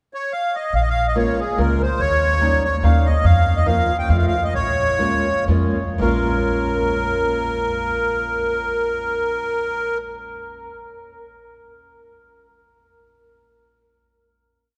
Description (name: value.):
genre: musette waltz.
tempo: 111-145 BPM.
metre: 3/4.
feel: swing 55% on 8ths.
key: Bb minor.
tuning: A4 = 438 Hz.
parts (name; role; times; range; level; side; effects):
accordion; melody; 0.1-10.0 s; Ab4 to G5; -23 LUFS; equal; light tremolo tuning.
upright bass; bass; 0.7-10.7 s; Bb1 to F2; -22 LUFS; equal; none.
picked old ladder-braced acoustic guitar; accompaniment; 1.2-10.7 s; F3 to F4; -27 LUFS; equal; none.
room: wet cathedral reverb, RT60 6.0 s.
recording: recorded in a church or concert hall.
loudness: -19 LUFS.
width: mono.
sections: 0.0-0.7 pickup bar; 0.7-6.0 A section; 6.0-9.2 final chord.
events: slowing down 3.2-6.0.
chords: 0.0 N.C.; 0.7 Bbm7; 2.0 Eb7; 3.2 Fsus4; 4.1 F; 4.5 Bbm7.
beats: 0.31 | 0.73 1.16 1.58 | 2.00 2.42 2.83 | 3.25 3.67 4.09 | 4.53 4.99 5.48 | 6.00 6.54 7.07 | 7.61 8.14 8.68.